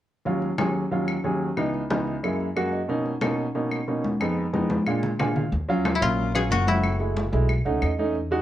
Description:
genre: Afro-Cuban jazz.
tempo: 182 BPM.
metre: 4/4.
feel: straight.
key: Eb minor.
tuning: A4 = 439 Hz.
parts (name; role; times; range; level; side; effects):
warm baby grand piano; accompaniment; 0.3-8.4 s; Db2 to Ab5; -25 LUFS; right 1 dB; none.
congas; percussion; 0.3-8.4 s; none; -30 LUFS; left 2 dB; none.
claves; percussion; 0.6-8.0 s; none; -35 LUFS; left 3 dB; none.
upright bass; bass; 5.5-8.4 s; Gb1 to Fb2; -25 LUFS; equal; none.
breathy baritone saxophone; second line; 5.9-7.0 s; Gb2 to Cb3; -31 LUFS; left 4 dB; none.
koto; melody; 6.0-8.4 s; Fb4 to Ab4; -26 LUFS; left 3 dB; none.
room: moderate studio reverb, RT60 0.7 s.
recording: worn, warbling old tape, cassette tape, warbly pitch drift.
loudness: -22 LUFS.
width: side -12 dB against mid.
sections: 0.3-5.5 A section; 5.5-8.4 B section.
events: grand piano fill 2.4-2.9, 5.0-5.5, 7.5-8.2; drum fill 4.5-5.5.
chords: 0.3 Ebm7; 1.6 Dbm7; 2.2 Gb7; 2.9 Bmaj7; 4.2 Fm7b5; 4.9 Bb7; 5.5 Ebm9; 6.8 Gbm7; 7.5 B7.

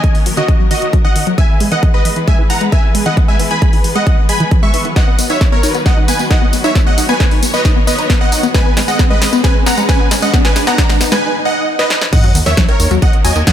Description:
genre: uplifting trance.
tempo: 134 BPM.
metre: 4/4.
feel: straight.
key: G# minor.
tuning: A4 = 440 Hz.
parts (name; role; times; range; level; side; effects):
supersaw stab; melody; 0.0-13.5 s; F#4 to C#6; -17 LUFS; right 1 dB; cassette tape, sidechain pumping, ping-pong delay.
clear studio string section; sustained chords; 0.0-13.5 s; D#3 to C#5; -24 LUFS; left 2 dB; sidechain pumping.
tight sequenced synth; arpeggios; 0.0-13.5 s; D#3 to D#4; -19 LUFS; left 2 dB; chorus, sidechain pumping, digital delay.
electronic kick drum; drums; 0.0-13.5 s; none; -12 LUFS; equal; none.
punchy analog drum machine; drums; 0.0-13.5 s; crash cymbal, hi-hat, snare drum, tambourine; -19 LUFS; equal; sidechain pumping on hats, high-pass filter on hats, high-pass filter on snare, sidechain pumping on perc, high-pass filter on perc, sidechain pumping on cymbals, high-pass filter on cymbals.
riser, swell and sub drop; sound effects; 2.7-13.5 s; none; -23 LUFS; right 1 dB; none.
gritty driven synth bass; bass; 12.3-13.4 s; D#2; -15 LUFS; equal; sidechain pumping.
room: light reverb.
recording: none.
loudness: -10 LUFS.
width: side -10 dB against mid.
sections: 0.0-12.1 A section; 12.1-13.5 B section.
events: build-up 0.0-12.1; filter sweep on synth arpeggio sound 0.0-12.1; riser 2.7-11.2; drum fill 5.0-11.2, 11.8-12.1; break 11.2-12.1; swell 11.2-12.1; drop 12.1-13.5; impact 12.1-13.5.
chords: 0.0 D#m7; 1.4 E; 5.0 B; 8.5 G#m; 12.1 D#m7.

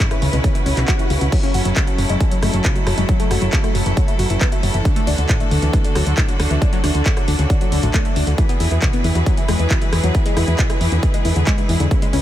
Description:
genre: uplifting trance.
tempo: 136 BPM.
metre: 4/4.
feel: straight.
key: unclear.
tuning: A4 = 440 Hz.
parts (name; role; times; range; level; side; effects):
bright symphonic string section; sustained chords; 0.0-12.2 s; C#3 to B4; -25 LUFS; equal; sidechain pumping.
analog pluck; arpeggios; 0.0-12.2 s; D2 to F#4; -23 LUFS; left 2 dB; chorus, phaser, sidechain pumping, tape echo.
electronic kick drum; drums; 0.0-12.0 s; none; -18 LUFS; equal; none.
punchy analog drum machine; drums; 0.0-12.2 s; crash cymbal, handclaps, hi-hat, rim click; -26 LUFS; equal; none.
solid FM bass; bass; 0.2-12.2 s; F#1 to E2; -18 LUFS; equal; sidechain pumping.
swell; sound effects; 0.6-1.3 s; none; -34 LUFS; equal; none.
room: light reverb.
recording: none.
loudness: -15 LUFS.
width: side -12 dB against mid.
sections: 0.0-12.2 A section.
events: swell 0.6-1.3.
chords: 0.0 C#m7; 1.3 F#m7; 4.9 D; 8.4 E.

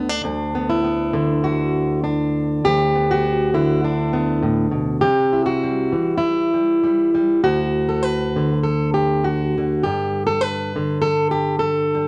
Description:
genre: folk, solo fingerstyle acoustic guitar.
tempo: 100 BPM.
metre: 4/4.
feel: rubato.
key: unclear.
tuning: A4 = 444 Hz.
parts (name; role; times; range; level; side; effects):
fingerpicked plugged-in steel-string acoustic guitar; solo; 0.0-12.1 s; D2 to B4; -20 LUFS; equal; none.
room: moderate club reverb, RT60 0.9 s.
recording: none.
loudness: -20 LUFS.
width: mono.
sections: 0.0-12.1 A section.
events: none.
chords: 0.0 Bm/D; 2.6 G/D; 5.0 C; 7.4 N.C.; 9.9 Gsus2.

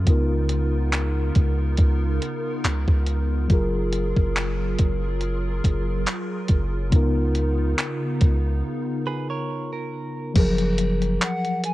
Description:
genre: contemporary R&B.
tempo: 70 BPM.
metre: 4/4.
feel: swing 54% on 16ths.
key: F# major.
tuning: A4 = 441 Hz.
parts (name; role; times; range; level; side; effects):
mellow tine electric piano; accompaniment; 0.0-11.7 s; C#3 to A#4; -27 LUFS; left 2 dB; medium stereo tremolo.
hollow soft pad; sustained chords; 0.0-10.3 s; C#3 to A#4; -32 LUFS; right 1 dB; ensemble chorus.
long sustained 808-style bass; bass; 0.0-11.2 s; F#1 to C#2; -23 LUFS; equal; none.
crisp 8-bit digital drum machine; drums; 0.1-11.7 s; crash cymbal, handclaps, hi-hat, kick drum; -21 LUFS; equal; none.
direct-recorded clean electric guitar; arpeggios; 9.1-10.3 s; G#4 to C#5; -32 LUFS; right 5 dB; tape echo.
hollow clarinet-like synth lead; melody; 11.2-11.7 s; F#5 to G#5; -26 LUFS; equal; chorus.
room: little or no reverb.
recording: worn, warbling old tape, cassette tape, warbly pitch drift.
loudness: -20 LUFS.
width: side -17 dB against mid.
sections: 0.0-10.4 A section; 10.4-11.7 B section.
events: break 8.6-10.4.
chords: 0.1 C#13; 3.5 F#maj9; 6.9 C#13; 10.4 F#maj9.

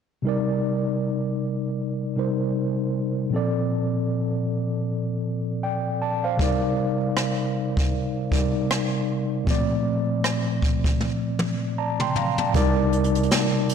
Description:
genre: contemporary R&B.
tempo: 78 BPM.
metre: 4/4.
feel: swing 58% on 16ths.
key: C dorian.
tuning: A4 = 440 Hz.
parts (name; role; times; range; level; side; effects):
mellow tine electric piano; accompaniment; 0.2-13.7 s; Bb2 to C6; -23 LUFS; equal; medium stereo tremolo.
jazz brush drum kit; drums; 6.4-13.7 s; hi-hat, kick drum, rim click, snare drum, toms; -25 LUFS; equal; soft clipping on snare.
warm 808-style bass; bass; 12.5-13.3 s; C2; -26 LUFS; equal; none.
room: light reverb, studio reverb.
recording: blown-out, overdriven recording, overdrive.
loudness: -22 LUFS.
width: side -7 dB against mid.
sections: 0.2-12.5 A section; 12.5-13.7 B section.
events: drum fill 11.0-12.5; tine electric piano fill 11.4-12.5.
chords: 0.2 Cm9; 3.3 Bbmaj7; 6.4 Cm9; 9.5 Bbmaj7; 12.5 Cm7.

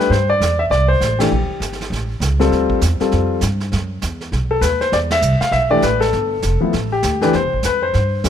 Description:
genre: jazz piano trio.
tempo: 199 BPM.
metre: 4/4.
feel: swing 61% on 8ths.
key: C major.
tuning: A4 = 442 Hz.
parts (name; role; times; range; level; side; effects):
warm grand piano; melody; 0.0-8.3 s; E3 to F5; -17 LUFS; left 2 dB; none.
vintage brush drum kit; drums; 0.0-8.3 s; brushed snare drum, hi-hat, kick drum, ride cymbal, snare drum; -26 LUFS; right 4 dB; none.
upright bass; bass; 0.1-8.3 s; F1 to G2; -19 LUFS; right 1 dB; none.
room: little or no reverb.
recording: close, detailed microphones.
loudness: -15 LUFS.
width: side -9 dB against mid.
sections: 0.1-8.3 A section.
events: band accent 1.2, 5.1.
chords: 0.1 C6; 1.3 Gm; 1.9 A7; 2.5 Dm7; 3.7 Esus2; 4.3 B; 4.9 E5; 6.1 G7sus2; 7.3 C6.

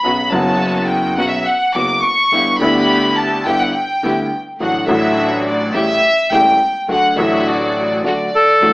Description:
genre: tango.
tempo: 105 BPM.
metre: 4/4.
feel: rubato.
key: D major.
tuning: A4 = 439 Hz.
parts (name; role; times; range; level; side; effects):
warm studio violin section; second line; 0.0-8.7 s; D5 to D6; -16 LUFS; equal; none.
clear concert grand piano; accompaniment; 0.0-8.7 s; E1 to F#4; -18 LUFS; left 1 dB; none.
dark chamber string section; stabs; 0.0-8.7 s; A3 to G4; -22 LUFS; equal; none.
upright bass; bass; 0.0-8.7 s; E1 to D2; -30 LUFS; equal; none.
bandoneon; melody; 8.4-8.7 s; A4; -9 LUFS; equal; none.
room: wet studio reverb, RT60 0.8 s.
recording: AM radio sound.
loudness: -13 LUFS.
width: side -22 dB against mid.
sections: 0.0-8.7 A section.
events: violin section solo 0.0-8.7.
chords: 0.0 Bsus2; 2.3 G6; 4.6 D/A; 5.7 A7; 6.9 D.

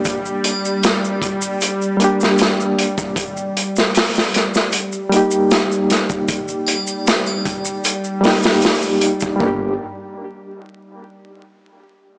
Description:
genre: trip hop.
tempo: 77 BPM.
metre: 4/4.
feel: straight.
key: G minor.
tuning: A4 = 439 Hz.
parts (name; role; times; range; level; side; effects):
bright reed electric piano; accompaniment; 0.0-9.7 s; G3 to G4; -19 LUFS; equal; fast tremolo, low-pass filter, tape echo.
maracas and triangle; percussion; 0.0-9.4 s; none; -27 LUFS; equal; none.
bowed-like drone; texture; 0.0-9.4 s; G3; -24 LUFS; equal; built-in reverb.
crunchy breakbeat drum kit; drums; 0.1-9.6 s; hi-hat, kick drum, snare drum; -17 LUFS; equal; none.
upright bass; bass; 9.4-9.8 s; G1; -29 LUFS; equal; tube saturation.
room: moderate lush hall reverb, RT60 2.0 s.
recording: blown-out, overdriven recording, vinyl crackle, overdrive, small speaker sound.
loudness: -15 LUFS.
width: side -37 dB against mid.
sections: 0.0-9.4 A section; 9.4-12.2 B section.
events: filter sweep on reed electric piano 0.0-9.4.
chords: 0.0 Gm; 3.2 Eb/G; 9.4 Gm.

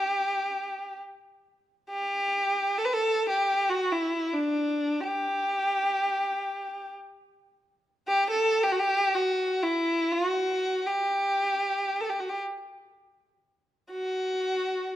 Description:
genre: arabic.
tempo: free time.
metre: none.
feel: none.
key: unclear.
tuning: A4 = 443 Hz.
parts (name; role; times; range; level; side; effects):
warm violin; solo; 0.0-15.0 s; D4 to B4; -25 LUFS; equal; none.
room: moderate recital hall reverb, RT60 1.6 s.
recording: minimal, uncompressed stereo recording.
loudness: -25 LUFS.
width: side -13 dB against mid.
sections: 0.0-15.0 A section.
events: none.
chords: none.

